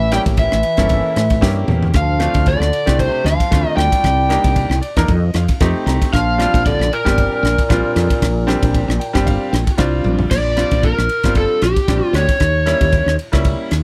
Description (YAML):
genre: electric jazz fusion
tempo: 115 BPM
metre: 4/4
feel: swing 55% on 16ths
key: Bb major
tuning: A4 = 439 Hz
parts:
  - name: lead guitar through a small cranked amp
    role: melody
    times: 0.0-13.2 s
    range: G4 to G5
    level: -21 LUFS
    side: equal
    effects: overdrive, slapback echo
  - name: clear bass clarinet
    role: second line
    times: 0.0-9.8 s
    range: Bb2 to G3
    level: -28 LUFS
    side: equal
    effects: none
  - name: woody fretless electric bass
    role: bass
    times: 0.0-13.8 s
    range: G1 to A2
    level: -20 LUFS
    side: equal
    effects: analog chorus
  - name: bright grand piano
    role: accompaniment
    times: 0.1-13.7 s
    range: G3 to Bb5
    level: -24 LUFS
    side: equal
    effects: none
  - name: crisp fusion drum kit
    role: drums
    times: 0.1-13.8 s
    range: crash cymbal, kick drum, ride cymbal, rim click, snare drum, toms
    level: -21 LUFS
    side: equal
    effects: none
room: little or no reverb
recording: none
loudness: -16 LUFS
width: mono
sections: 0.0-10.3 A section; 10.3-13.8 A section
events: drum fill 1.4-1.9, 10.1; grand piano fill 4.6-6.1, 8.7-10.3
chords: 0.0 A7b9; 1.9 Dm7; 4.0 Cm9; 5.1 F9; 6.1 Bb6; 12.4 Eb7b9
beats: 0.38 0.90 1.43 | 1.95 2.47 3.00 3.52 | 4.04 4.57 5.09 5.61 | 6.13 6.66 7.18 7.70 | 8.22 8.75 9.27 9.79 | 10.31 10.84 11.36 11.88 | 12.41 12.93 13.45